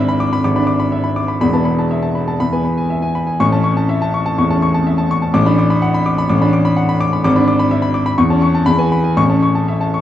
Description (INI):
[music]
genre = classical, virtuoso piano study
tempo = 124 BPM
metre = 4/4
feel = uneven beats, rubato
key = A major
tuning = A4 = 440 Hz
[part]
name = warm concert grand piano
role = solo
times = 0.0-10.0 s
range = E1 to D6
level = -13 LUFS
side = left 1 dB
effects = none
[sound]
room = wet scoring stage reverb, RT60 1.7 s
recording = worn, warbling old tape, cassette tape, warbly pitch drift, studio ambience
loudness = -13 LUFS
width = side -11 dB against mid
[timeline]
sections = 0.0-10.0 A section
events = none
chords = 0.0 E7/G#; 1.4 Esus4; 2.4 E; 3.4 A; 5.3 Bm7/A; 7.2 E7/G#; 8.2 A/E; 8.7 E; 9.2 A